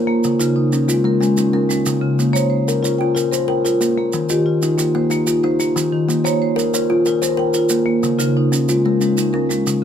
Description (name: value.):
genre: southern african traditional, mbira-style interlocking cycle.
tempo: 123 BPM (dotted quarters).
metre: 12/8.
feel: straight.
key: Bb dorian.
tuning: A4 = 440 Hz.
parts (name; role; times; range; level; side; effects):
kalimba; arpeggios; 0.0-9.8 s; Db3 to Db5; -17 LUFS; left 2 dB; none.
marimba with soft mallets; arpeggios; 0.0-9.8 s; Db3 to G5; -19 LUFS; right 2 dB; none.
maracas; percussion; 0.2-9.8 s; none; -26 LUFS; right 6 dB; none.
room: light reverb.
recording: close, detailed microphones.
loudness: -15 LUFS.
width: side -8 dB against mid.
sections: 0.0-9.8 A section.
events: none.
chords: 0.2 Db; 2.2 Bbm; 4.1 Eb; 6.1 Bbm; 8.0 Db.